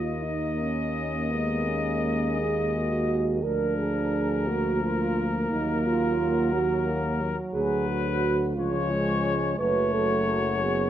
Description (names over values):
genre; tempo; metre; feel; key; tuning
classical, hymn-like piece for brass band; 58 BPM (dotted quarters); 6/8; rubato; Eb minor, F# minor from 7.5 s; A4 = 440 Hz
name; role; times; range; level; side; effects
mellow trumpet section; melody; 0.0-10.9 s; Bb4 to Eb5; -30 LUFS; left 5 dB; none
dark French horn section; second line; 0.0-10.9 s; Cb4 to B4; -28 LUFS; right 5 dB; none
warm trombone section; accompaniment; 0.0-10.9 s; E#3 to Bb3; -34 LUFS; left 3 dB; none
mellow tuba; bass; 0.0-10.9 s; F#1 to Eb2; -30 LUFS; left 1 dB; none
warm euphonium; accompaniment; 0.2-10.9 s; Gb3 to D4; -31 LUFS; right 2 dB; none
room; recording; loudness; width
moderate recital hall reverb, RT60 1.8 s; close, detailed microphones; -24 LUFS; side -11 dB against mid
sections
0.0-10.9 A section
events
none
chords
0.0 Eb5; 1.3 Ab5/Eb; 3.4 Bb7/D; 5.5 Ebm; 7.5 Bm/D; 8.5 C#; 9.6 F#m